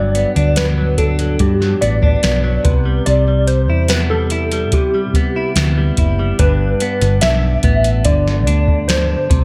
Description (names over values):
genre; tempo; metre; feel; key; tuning
indie pop, bedroom pop; 72 BPM; 4/4; straight; G major; A4 = 440 Hz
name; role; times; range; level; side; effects
warm analog keys; melody; 0.0-9.4 s; G4 to E5; -22 LUFS; equal; ensemble chorus, tape echo
direct-recorded clean electric guitar; accompaniment; 0.0-9.4 s; G2 to E4; -23 LUFS; equal; lush chorus, vibrato effect
hollow-body short-scale fingered electric bass; bass; 0.0-9.4 s; F#1 to C3; -18 LUFS; equal; none
soft vintage rhythm box; drums; 0.1-9.4 s; hi-hat, kick drum, snare drum; -20 LUFS; equal; none
room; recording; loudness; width
little or no reverb; none; -15 LUFS; mono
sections
0.0-6.4 A section; 6.4-9.4 B section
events
none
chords
0.0 Gmaj7; 2.7 Cmaj7; 6.4 G